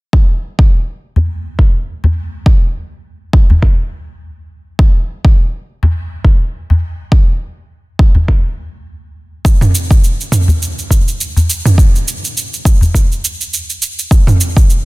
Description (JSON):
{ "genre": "downtempo", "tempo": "103 BPM", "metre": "4/4", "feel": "swing 57% on 16ths", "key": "none", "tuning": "none", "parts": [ { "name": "electronic kick drum", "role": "drums", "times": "0.1-14.7 s", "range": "none", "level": "-9 LUFS", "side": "equal", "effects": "studio reverb" }, { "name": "udu", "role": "percussion", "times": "1.2-12.9 s", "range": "none", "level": "-14 LUFS", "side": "left 1 dB", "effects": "none" }, { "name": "electronic cabasa and toms", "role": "drums", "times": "9.5-14.8 s", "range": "none", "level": "-15 LUFS", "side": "right 2 dB", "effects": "studio reverb" } ], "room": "little or no reverb", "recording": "dense, heavily limited modern master", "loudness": "-10 LUFS", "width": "side -23 dB against mid", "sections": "0.1-14.8 A section", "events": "none", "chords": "none" }